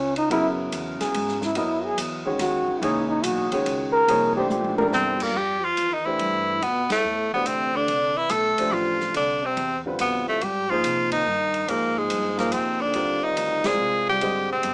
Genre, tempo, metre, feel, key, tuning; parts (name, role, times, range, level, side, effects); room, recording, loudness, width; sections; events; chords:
modal jazz; 142 BPM; 3/4; swing 67% on 8ths; A4 = 437 Hz
breathy trombone; second line; 0.0-14.7 s; Ab2 to Bb4; -29 LUFS; equal
upright bass; bass; 0.0-14.7 s; G1 to C3; -38 LUFS; equal
open jazz drum kit; drums; 0.2-14.7 s; crash cymbal, hi-hat, kick drum, ride cymbal, snare drum, toms; -37 LUFS; equal
clear grand piano; accompaniment; 0.3-14.7 s; Db3 to Eb5; -30 LUFS; equal
bright tenor saxophone; melody; 4.9-14.7 s; Ab3 to A4; -25 LUFS; equal
moderate studio reverb, RT60 0.6 s; small speaker sound; -24 LUFS; mono
0.0-5.3 A section; 5.3-14.7 B section
trombone solo 0.0-5.3; drum fill 4.5-4.9; band accent 6.8, 11.1, 13.6
0.3 Gb13sus4; 4.1 C9; 5.3 Fmaj9; 10.4 Abmaj9